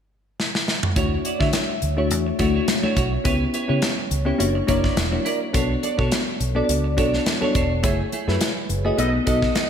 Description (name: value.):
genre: polished 1980s jazz-funk pop.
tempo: 105 BPM.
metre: 4/4.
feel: swing 54% on 16ths.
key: D major.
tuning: A4 = 442 Hz.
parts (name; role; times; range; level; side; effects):
modern studio drum kit; drums; 0.4-9.7 s; hi-hat, kick drum, snare drum, toms; -24 LUFS; equal; gated reverb.
bell-like FM electric piano; accompaniment; 1.0-9.7 s; A3 to E5; -22 LUFS; left 2 dB; lush chorus.
clean electric guitar; riff; 1.0-9.7 s; A3 to D#5; -29 LUFS; right 5 dB; lush chorus.
vintage muted fingered electric bass; bass; 1.0-9.5 s; E1 to D3; -24 LUFS; right 1 dB; none.
congas; percussion; 1.5-9.7 s; none; -38 LUFS; left 2 dB; none.
warm horn section; second line; 9.0-9.1 s; B3 to D#5; -29 LUFS; right 1 dB; none.
room: moderate lush hall reverb, RT60 1.7 s, studio reverb.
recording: bright 1980s-style digital production, faint mains hum.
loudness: -19 LUFS.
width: side -8 dB against mid.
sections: 1.0-9.7 A section.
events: drum fill 0.4-1.0; band accent 7.8-9.7.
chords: 0.0 N.C.; 1.0 Dmaj9; 3.3 C#m7b5; 4.4 F#7b13; 5.5 Bm9; 7.8 F#m9; 9.0 B7.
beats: 0.39 | 0.96 1.54 2.11 2.68 | 3.25 3.83 4.40 4.97 | 5.54 6.12 6.69 7.26 | 7.84 8.41 8.98 9.56.